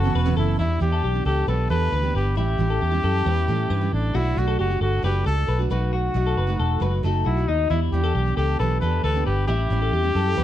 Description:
indie pop; 135 BPM; 4/4; straight; A4 = 440 Hz
clear trumpet; melody; 0.0-10.4 s; D4 to B4; -26 LUFS; left 1 dB; slapback echo
picked steel-string acoustic guitar; accompaniment; 0.0-10.4 s; F#2 to G4; -28 LUFS; right 7 dB
lush unison pad; sustained chords; 0.0-0.6 s; B4 to E6; -44 LUFS; right 1 dB
twelve-string electric guitar; arpeggios; 0.0-10.4 s; D#4 to B4; -29 LUFS; left 8 dB; slapback echo
vintage muted fingered electric bass; bass; 0.0-10.4 s; E1 to A2; -22 LUFS; equal
light reverb; dark, warm production; -20 LUFS; side -12 dB against mid
0.6-10.4 A section
0.0 F#7sus4; 0.6 Em7; 2.4 A7; 4.1 Bm7; 5.7 B7; 7.7 Em7; 9.5 A7

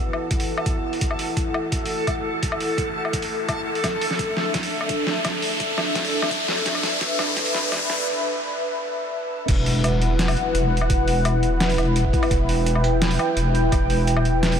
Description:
half-time drum and bass; 170 BPM; 4/4; half-time; E minor; A4 = 441 Hz
dark analog pad; sustained chords; 0.0-14.6 s; D4 to G5; -24 LUFS; left 1 dB; chorus, vintage 12-bit sampler grit, sidechain pumping
riser and impact; sound effects; 0.7-10.9 s; -29 LUFS; equal
backwards swelling texture; texture; 0.0-8.1 s; A4; -31 LUFS; right 3 dB; built-in reverb, wide subtle chorus
boom bap sampler-style drum kit; drums; 0.1-14.6 s; crash cymbal, hi-hat, snare drum, woodblock; -27 LUFS; equal
electronic kick drum; drums; 0.3-13.8 s; -25 LUFS; equal
deep soft wobble bass; bass; 9.5-14.6 s; E1; -21 LUFS; equal; chorus
moderate huge ambient reverb, RT60 7.9 s; dreamy mix soaked in reverb, high-pass filter; -20 LUFS; side -8 dB against mid
0.0-9.5 A section; 9.5-14.6 B section
build-up 0.0-9.5; filter sweep 0.0-9.5; riser 0.7-8.1; drum fill 3.8-8.1; break 8.1-9.5; drop 9.5-14.6; impact 9.5-10.9
0.0 E5; 3.8 D5; 9.5 Em

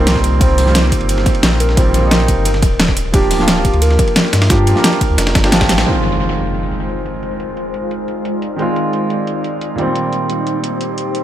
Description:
liquid drum and bass; 176 BPM; 4/4; straight; F dorian; A4 = 440 Hz
hollow clarinet-like synth lead; melody; 0.0-5.5 s; F4 to C5; -21 LUFS; right 1 dB; chorus, dub echo
clear concert grand piano; accompaniment; 0.0-11.2 s; Bb2 to Bb4; -19 LUFS; right 1 dB; analog delay
warm sub bass; bass; 0.0-5.8 s; D1 to G2; -15 LUFS; equal
dusty soul sampler-style drum kit; drums; 0.1-5.9 s; hi-hat, ride cymbal, snare drum; -21 LUFS; equal; high-pass filter on snare, high-pass filter on cymbals, high-pass filter on hats, analog delay
pop drum kit; drums; 0.1-11.2 s; hi-hat, snare drum; -19 LUFS; equal; overdrive, low-pass filter on snare, low-pass filter on hats, low-pass filter on room, analog delay
electronic kick drum; drums; 0.2-5.7 s; -16 LUFS; equal; overdrive
ethereal airy pad; sustained chords; 6.5-11.2 s; Ab3 to D5; -22 LUFS; left 1 dB; ensemble chorus, built-in reverb
impact; sound effects; 5.9-7.2 s; -22 LUFS; equal
light reverb; echo-heavy mix; -12 LUFS; side -11 dB against mid
0.0-5.9 A section; 5.9-11.2 B section
drum fill 5.6; band accent 5.8; impact 5.9-7.2; filter sweep on drum 5.9-11.2
0.0 Cm7; 2.5 Gm7; 5.9 Fm7; 9.8 Cm7

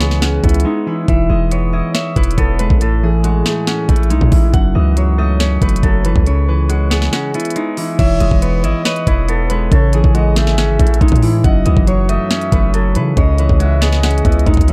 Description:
hip hop, trap; 139 BPM; 4/4; half-time; E major; A4 = 444 Hz
concert harp; melody; 0.0-14.7 s; D#4 to F#5; -24 LUFS; equal
semi-hollow electric guitar; accompaniment; 0.0-14.7 s; F#2 to E5; -22 LUFS; equal; spring reverb
hard-hitting 808-style bass; bass; 0.0-14.7 s; E1 to C#3; -17 LUFS; equal
trap drum kit; drums; 0.0-14.7 s; crash cymbal, hi-hat, kick drum, snare drum; -18 LUFS; equal
breathy flute-like synth lead; second line; 8.0-14.7 s; B4 to E5; -27 LUFS; equal; chorus, delay
little or no reverb; dark, warm production; -14 LUFS; mono
0.0-8.0 A section; 8.0-14.7 B section
break 0.7-1.1, 7.1-8.0
0.0 C#m7; 1.1 E; 2.8 Amaj7; 4.5 F#m7; 6.3 C#m7; 8.0 E; 9.7 Amaj7; 11.4 F#m7; 13.2 C#m7

